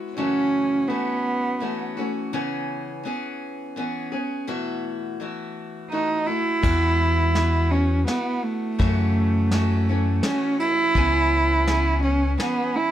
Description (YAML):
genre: acoustic folk duo or small band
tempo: 83 BPM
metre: 3/4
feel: straight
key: unclear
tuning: A4 = 441 Hz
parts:
  - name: picked steel-string acoustic guitar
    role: accompaniment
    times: 0.0-12.9 s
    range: F#2 to G#4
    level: -28 LUFS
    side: left 2 dB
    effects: none
  - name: warm cello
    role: melody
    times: 0.2-2.0, 5.9-12.9 s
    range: A3 to E4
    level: -22 LUFS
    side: right 2 dB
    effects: none
  - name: fingered electric bass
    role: bass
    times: 6.6-12.4 s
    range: C#2 to F#2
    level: -22 LUFS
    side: left 1 dB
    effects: none
  - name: vintage brush drum kit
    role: drums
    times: 6.6-12.6 s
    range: crash cymbal, kick drum, ride cymbal, snare drum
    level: -29 LUFS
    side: left 1 dB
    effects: none
room: light reverb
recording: close, detailed microphones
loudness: -20 LUFS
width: side -11 dB against mid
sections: 0.0-6.6 A section; 6.6-12.9 B section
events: none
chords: 0.2 F#m7; 2.3 C#m7; 4.5 B7sus4; 6.6 Eadd9; 8.8 F#m7; 11.0 C#m7